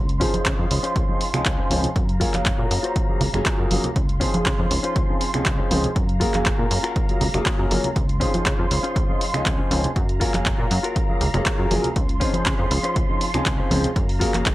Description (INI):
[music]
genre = filtered disco house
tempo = 120 BPM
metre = 4/4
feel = straight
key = Db major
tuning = A4 = 439 Hz
[part]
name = warm symphonic violin section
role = sustained chords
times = 0.0-14.5 s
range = F4 to C6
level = -30 LUFS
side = right 2 dB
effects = sidechain pumping, low-pass filter
[part]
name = plucky analog bass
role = bass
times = 0.0-14.5 s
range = Gb1 to Db3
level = -25 LUFS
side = equal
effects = sidechain pumping, low-pass filter
[part]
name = punchy analog drum machine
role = drums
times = 0.1-14.5 s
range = finger snaps, handclaps, hi-hat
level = -26 LUFS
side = equal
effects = sidechain pumping on hats
[part]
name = tambourine and congas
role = percussion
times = 0.1-14.5 s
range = none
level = -28 LUFS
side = right 2 dB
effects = sidechain pumping on perc, low-pass filter on perc
[part]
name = clear concert grand piano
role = accompaniment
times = 0.2-14.5 s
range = F3 to F5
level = -27 LUFS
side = left 1 dB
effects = phaser, vintage 12-bit sampler grit, sidechain pumping, low-pass filter
[part]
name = direct-recorded clean electric guitar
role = riff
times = 0.2-14.5 s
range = Db4 to C5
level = -30 LUFS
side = left 3 dB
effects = sidechain pumping, low-pass filter
[part]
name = electronic kick drum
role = drums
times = 0.2-14.5 s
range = none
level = -23 LUFS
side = equal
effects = none
[sound]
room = little or no reverb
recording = dry, gritty hardware recording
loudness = -19 LUFS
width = side -16 dB against mid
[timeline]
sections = 0.0-14.5 A section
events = filter sweep 0.0-14.5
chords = 0.0 Dbmaj7; 2.0 Gbmaj7; 4.0 Dbmaj7; 6.0 Gbmaj7; 8.0 Dbmaj7; 10.0 Gbmaj7; 12.0 Dbmaj7; 14.0 Gbmaj7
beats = 0.46 0.96 1.46 | 1.96 2.46 2.96 3.46 | 3.96 4.46 4.96 5.46 | 5.96 6.46 6.96 7.46 | 7.96 8.46 8.96 9.46 | 9.96 10.46 10.96 11.46 | 11.96 12.46 12.96 13.46 | 13.96 14.46